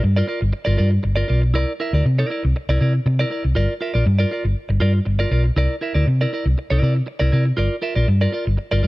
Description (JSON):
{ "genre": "disco", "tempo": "119 BPM", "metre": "4/4", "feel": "straight", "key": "G dorian", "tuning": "A4 = 440 Hz", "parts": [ { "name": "clean electric guitar", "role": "accompaniment", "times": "0.0-8.9 s", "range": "E4 to E5", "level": "-24 LUFS", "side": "right 1 dB", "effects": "none" }, { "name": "hollow-body short-scale fingered electric bass", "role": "bass", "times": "0.0-8.9 s", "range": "G1 to C3", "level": "-17 LUFS", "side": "equal", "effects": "none" } ], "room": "little or no reverb", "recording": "none", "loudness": "-17 LUFS", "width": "side -19 dB against mid", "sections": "0.0-8.9 A section", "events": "none", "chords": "0.0 Gm7; 1.5 C9; 3.6 Gm7; 5.6 C9; 7.6 Gm7" }